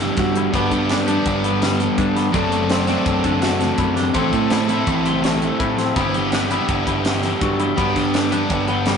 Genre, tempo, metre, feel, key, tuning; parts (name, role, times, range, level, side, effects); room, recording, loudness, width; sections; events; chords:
math rock and midwest emo; 166 BPM; 5/4; straight; G major; A4 = 439 Hz
twelve-string electric guitar; accompaniment; 0.0-9.0 s; G2 to A4; -25 LUFS; right 4 dB
kora; arpeggios; 0.0-9.0 s; G3 to F#4; -25 LUFS; left 4 dB
cranked stack guitar; riff; 0.0-9.0 s; F#3 to A4; -20 LUFS; left 1 dB; overdrive
growling picked electric bass; bass; 0.0-9.0 s; F#1 to A2; -24 LUFS; equal; overdrive
crisp fusion drum kit; drums; 0.0-8.9 s; hi-hat, kick drum, snare drum; -25 LUFS; equal
moderate stone room reverb, RT60 1.1 s; rough rehearsal-room recording, tube saturation, nothing above 10.4 kHz; -16 LUFS; side -6 dB against mid
0.0-9.0 A section
0.0 Em9/G; 0.5 Gadd9; 2.3 D7/F#; 4.1 Am7; 6.0 Em9/G